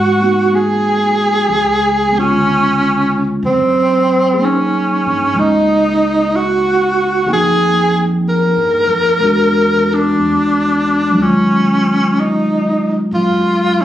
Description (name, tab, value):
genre	jazz ballad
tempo	62 BPM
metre	4/4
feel	swing 69% on 8ths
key	unclear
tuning	A4 = 440 Hz
part	breathy tenor saxophone	melody	0.0-13.8 s	C4 to Bb4	-13 LUFS	right 1 dB	none
part	upright bass	bass	0.0-13.8 s	Db2 to Ab2	-20 LUFS	right 1 dB	none
part	tine electric piano	accompaniment	0.2-13.8 s	D3 to G5	-18 LUFS	left 1 dB	medium tremolo
room	light reverb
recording	recorded on a phone in the room, club reverb, compression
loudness	-11 LUFS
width	side -12 dB against mid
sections	0.0-13.8 A section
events	none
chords	0.0 Abm9; 1.5 Db7b9; 3.4 Gb6; 7.3 Fm11; 9.2 E9; 11.2 Ebm11